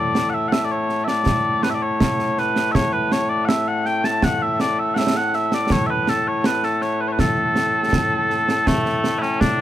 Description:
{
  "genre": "scottish traditional, Scottish pipe music",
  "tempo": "81 BPM",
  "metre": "2/4",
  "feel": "straight",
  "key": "A major",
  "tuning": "A4 = 440 Hz",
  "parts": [
    { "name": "mellow small bagpipes", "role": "melody", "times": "0.0-9.6 s", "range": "A2 to A5", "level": "-19 LUFS", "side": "left 1 dB", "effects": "none" },
    { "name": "concert snare drum and concert bass drum", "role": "drums", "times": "0.2-9.6 s", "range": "none", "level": "-22 LUFS", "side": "right 1 dB", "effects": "none" }
  ],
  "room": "light reverb",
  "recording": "none",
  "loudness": "-18 LUFS",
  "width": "side -12 dB against mid",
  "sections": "0.0-8.7 A section",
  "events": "none",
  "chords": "none"
}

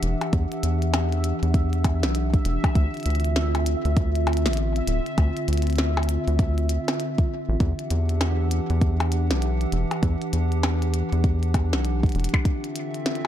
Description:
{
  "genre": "IDM",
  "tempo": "99 BPM",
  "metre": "4/4",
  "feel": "swing 62% on 16ths",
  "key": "E minor",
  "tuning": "A4 = 440 Hz",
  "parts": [
    { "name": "warbly tape-like pad", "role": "sustained chords", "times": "0.0-13.3 s", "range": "D3 to F#5", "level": "-28 LUFS", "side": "right 1 dB", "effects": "chorus, built-in reverb" },
    { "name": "rubbery square bass", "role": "bass", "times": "0.0-12.3 s", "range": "D1 to E2", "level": "-23 LUFS", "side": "equal", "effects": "none" },
    { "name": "glitchy drum kit", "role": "drums", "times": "0.0-13.3 s", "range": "hi-hat, percussion blips, snare drum", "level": "-29 LUFS", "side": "left 1 dB", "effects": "none" },
    { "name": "bubbling stepped-filter texture", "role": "texture", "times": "0.0-10.0 s", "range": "E5", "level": "-36 LUFS", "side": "left 2 dB", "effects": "chorus, built-in reverb" },
    { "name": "electronic kick drum", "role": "drums", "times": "0.3-12.6 s", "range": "none", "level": "-22 LUFS", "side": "equal", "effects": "none" }
  ],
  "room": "little or no reverb",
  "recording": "dark, warm production",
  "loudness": "-21 LUFS",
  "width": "side -11 dB against mid",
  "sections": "0.0-13.3 A section",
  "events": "none",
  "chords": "0.0 Em9; 2.8 Dm9; 7.6 Em9; 12.5 Dm9"
}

